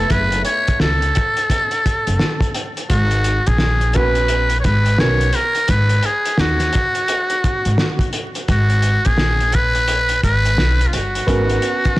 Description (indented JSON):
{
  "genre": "hip hop, jazz-hop",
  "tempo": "86 BPM",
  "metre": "4/4",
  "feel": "swing 62% on 16ths",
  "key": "unclear",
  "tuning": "A4 = 440 Hz",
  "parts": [
    { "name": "trumpet with metal mute", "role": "melody", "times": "0.0-12.0 s", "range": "E#4 to C#5", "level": "-19 LUFS", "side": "equal", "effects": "analog delay" },
    { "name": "dark grand piano", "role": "accompaniment", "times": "0.0-5.3, 11.3-12.0 s", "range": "A3 to B4", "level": "-22 LUFS", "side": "right 2 dB", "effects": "none" },
    { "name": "upright bass", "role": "bass", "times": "0.0-11.6 s", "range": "F#1 to D#2", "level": "-18 LUFS", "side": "equal", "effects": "tube saturation" },
    { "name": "cloth-damped thuddy drum kit", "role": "drums", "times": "0.1-12.0 s", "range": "hi-hat, kick drum, snare drum", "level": "-20 LUFS", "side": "equal", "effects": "soft clipping on kick" }
  ],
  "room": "light reverb, small room ambience",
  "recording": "blown-out, overdriven recording, vinyl crackle, overdrive",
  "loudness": "-14 LUFS",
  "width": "side -18 dB against mid",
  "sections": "0.0-12.0 A section",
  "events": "none",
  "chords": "0.0 F#m11; 2.9 G#m11",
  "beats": "| 0.11 0.81 1.51 2.20 | 2.90 3.60 4.30 5.00 | 5.69 6.39 7.09 7.79 | 8.48 9.18 9.88 10.58 | 11.27 11.97"
}